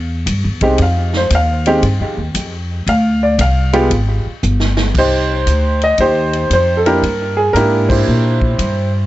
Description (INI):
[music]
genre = jazz piano trio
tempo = 115 BPM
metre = 4/4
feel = swing 67% on 8ths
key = C minor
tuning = A4 = 442 Hz
[part]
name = upright bass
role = bass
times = 0.0-9.1 s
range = G1 to Bb2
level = -16 LUFS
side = equal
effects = none
[part]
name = swinging big-band drum kit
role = drums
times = 0.3-8.8 s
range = crash cymbal, hi-hat, kick drum, ride cymbal, snare drum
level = -23 LUFS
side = equal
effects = none
[part]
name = warm concert grand piano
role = melody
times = 0.6-8.9 s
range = Ab3 to F5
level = -15 LUFS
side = equal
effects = analog delay
[sound]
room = little or no reverb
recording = nothing above 7.9 kHz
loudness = -12 LUFS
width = side -15 dB against mid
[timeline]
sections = 0.0-5.0 A section; 5.0-9.1 B section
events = grand piano solo 0.0-5.0; drum fill 4.4-5.0; band accent 7.8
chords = 0.0 C; 0.8 F7(no3); 2.9 Dm7; 3.9 N.C.; 5.0 Cmadd9; 7.0 C7